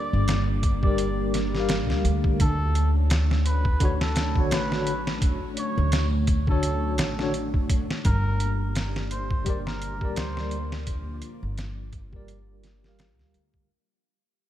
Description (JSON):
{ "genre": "trip hop", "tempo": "85 BPM", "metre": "4/4", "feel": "swing 56% on 16ths", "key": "unclear", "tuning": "A4 = 440 Hz", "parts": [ { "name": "trumpet with cup mute", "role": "melody", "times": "0.0-10.7 s", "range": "A4 to D5", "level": "-34 LUFS", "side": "right 1 dB", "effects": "tape echo" }, { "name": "string machine, cellos", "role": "sustained chords", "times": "0.0-13.7 s", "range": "A3 to D5", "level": "-33 LUFS", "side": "equal", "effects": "phaser, ensemble chorus" }, { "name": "upright bass", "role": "bass", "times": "0.1-13.7 s", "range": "G1 to D2", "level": "-26 LUFS", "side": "equal", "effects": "none" }, { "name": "trip hop sampler-style drum kit", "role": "drums", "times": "0.3-13.7 s", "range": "hi-hat, kick drum, snare drum", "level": "-26 LUFS", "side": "equal", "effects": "none" }, { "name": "tine electric piano", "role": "accompaniment", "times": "0.8-13.7 s", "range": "D3 to F5", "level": "-31 LUFS", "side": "left 2 dB", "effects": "medium stereo tremolo, tape echo" } ], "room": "light reverb", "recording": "none", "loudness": "-22 LUFS", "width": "side -12 dB against mid", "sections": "0.0-8.0 A section; 8.0-13.7 B section", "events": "fade-out 8.0-13.7", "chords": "0.0 Gm; 2.4 Dmaj7; 8.0 Gm" }